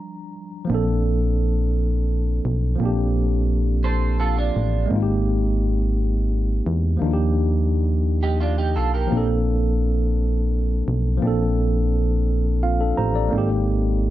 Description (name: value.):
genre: slow six-eight R&B.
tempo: 57 BPM (dotted quarters).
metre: 6/8.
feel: straight.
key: Bb major.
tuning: A4 = 440 Hz.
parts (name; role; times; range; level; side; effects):
mellow tine electric piano; accompaniment; 0.0-14.1 s; F3 to Bb5; -24 LUFS; equal; medium stereo tremolo.
solid FM bass; bass; 0.7-14.1 s; Ab1 to E2; -20 LUFS; equal; none.
electric guitar at the edge of break-up; second line; 3.8-4.9, 8.2-9.3 s; D4 to C5; -26 LUFS; right 7 dB; analog chorus.
room: light reverb.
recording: none.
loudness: -19 LUFS.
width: side -14 dB against mid.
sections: 0.7-14.1 A section.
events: stop 0.0-0.7; tine electric piano fill 12.3-13.3.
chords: 0.0 Ebmaj9 (rootless); 0.7 Bbmaj9; 4.9 Abmaj7; 7.0 Ebmaj9; 9.1 Bbmaj9; 13.3 Abmaj7.